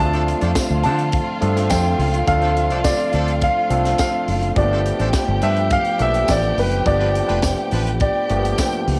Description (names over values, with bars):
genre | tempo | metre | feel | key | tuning
disco | 105 BPM | 4/4 | straight | D dorian | A4 = 440 Hz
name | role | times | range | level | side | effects
warm concert grand piano | melody | 0.0-8.8 s | B4 to A5 | -24 LUFS | equal | cassette tape
warm studio violin section | second line | 0.0-9.0 s | F4 to G5 | -29 LUFS | equal | cassette tape
barky tine electric piano | accompaniment | 0.0-9.0 s | F3 to A4 | -27 LUFS | equal | overdrive, cassette tape
bright studio string section | sustained chords | 0.0-9.0 s | D3 to G4 | -36 LUFS | equal | none
fingered electric bass | bass | 0.0-9.0 s | F1 to D3 | -23 LUFS | equal | none
warm horn section | stabs | 0.1-7.9 s | F3 to B4 | -32 LUFS | equal | cassette tape
tight funk drum kit | drums | 0.1-9.0 s | hi-hat, kick drum, snare drum | -27 LUFS | equal | none
tambourine | percussion | 0.6-8.7 s | none | -33 LUFS | equal | none
room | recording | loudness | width
light reverb, small room ambience | home recording on cassette | -19 LUFS | mono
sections
0.0-9.0 A section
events
none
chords
0.0 Dm7; 4.6 G9